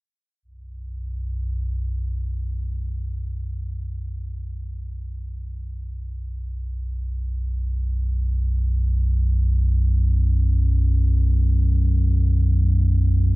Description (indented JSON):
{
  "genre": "ambient",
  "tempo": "free time",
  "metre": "none",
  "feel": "none",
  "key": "unclear",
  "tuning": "A4 = 441 Hz",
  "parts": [
    { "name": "deep rumbling drone", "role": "solo", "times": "0.6-13.4 s", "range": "B1 to F#2", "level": "-20 LUFS", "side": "equal", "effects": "built-in reverb, ping-pong delay" }
  ],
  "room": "little or no reverb",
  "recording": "dark, warm production",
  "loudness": "-20 LUFS",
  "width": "side -22 dB against mid",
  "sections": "0.4-13.4 A section",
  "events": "none",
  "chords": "0.4 B5",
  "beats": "free time"
}